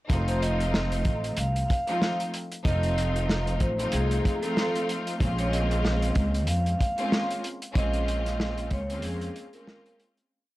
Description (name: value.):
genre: hip hop, boom-bap hip-hop.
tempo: 94 BPM.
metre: 4/4.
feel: swing 58% on 16ths.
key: Bb minor.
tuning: A4 = 440 Hz.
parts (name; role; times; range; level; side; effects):
bright studio string section; accompaniment; 0.1-10.3 s; F3 to F4; -30 LUFS; equal; high-pass filter, low-pass filter.
upright bass; bass; 0.1-9.3 s; F1 to F2; -28 LUFS; equal; tube saturation.
warm soul drum kit; drums; 0.1-10.3 s; hi-hat, kick drum, snare drum; -29 LUFS; equal; none.
vibraphone with medium hard mallets; melody; 0.3-10.0 s; Ab4 to F5; -32 LUFS; right 1 dB; high-pass filter, low-pass filter.
room: little or no reverb.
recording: dry, gritty hardware recording, vinyl crackle.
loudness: -24 LUFS.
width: side -17 dB against mid.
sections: 0.1-10.3 verse.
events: fade-out 7.8-10.3; break 9.0-10.3.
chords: 0.1 F7; 5.2 Bbm7.